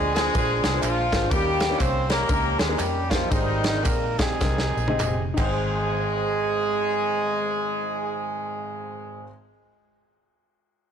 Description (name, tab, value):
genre	uptempo gospel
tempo	93-124 BPM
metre	4/4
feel	swing 61% on 8ths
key	Ab major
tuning	A4 = 440 Hz
part	mellow horn section	melody	0.0-9.3 s	Eb3 to C5	-25 LUFS	right 1 dB	slapback echo
part	warm concert grand piano	accompaniment	0.0-9.3 s	Ab1 to G5	-30 LUFS	left 1 dB	none
part	vintage muted fingered electric bass	bass	0.0-9.3 s	F1 to F2	-29 LUFS	equal	none
part	modern studio drum kit	drums	0.2-5.5 s	crash cymbal, kick drum, ride cymbal, snare drum, toms	-26 LUFS	equal	none
part	tambourine and handclaps	percussion	0.2-6.0 s	none	-37 LUFS	right 5 dB	none
room	light reverb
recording	blown-out, overdriven recording, overdrive, lossy compression artefacts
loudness	-21 LUFS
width	side -8 dB against mid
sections	0.0-5.6 A section; 5.6-10.8 B section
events	slowing down 1.3-5.6; drum fill 4.4-5.6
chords	0.0 Bb7; 1.3 Eb7; 3.3 Abmaj7